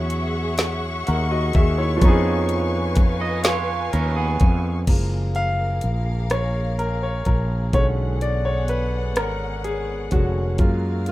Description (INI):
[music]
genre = slow six-eight R&B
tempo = 42 BPM (dotted quarters)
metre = 6/8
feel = straight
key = F# major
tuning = A4 = 439 Hz
[part]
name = clear grand piano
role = accompaniment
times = 0.0-11.1 s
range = D3 to F#5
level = -25 LUFS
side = equal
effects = none
[part]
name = warm studio string section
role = sustained chords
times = 0.0-11.1 s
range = F#3 to C#6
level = -30 LUFS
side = left 1 dB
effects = none
[part]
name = fretless electric bass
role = bass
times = 0.0-11.1 s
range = E#1 to F#2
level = -23 LUFS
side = equal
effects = none
[part]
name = smooth R&B drum kit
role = drums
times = 0.1-11.1 s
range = crash cymbal, hi-hat, kick drum, rim click, snare drum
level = -19 LUFS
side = equal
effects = none
[part]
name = electric guitar at the edge of break-up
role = second line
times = 3.2-4.8 s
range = B3 to D#5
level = -25 LUFS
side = right 6 dB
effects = none
[sound]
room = little or no reverb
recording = rough home demo mix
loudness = -19 LUFS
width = side -16 dB against mid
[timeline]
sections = 0.0-4.9 A section; 4.9-11.1 B section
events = grand piano solo 4.9-11.1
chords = 0.0 E69; 2.0 C#7/E#; 4.9 F#maj7; 7.7 Bm6; 10.6 F#maj7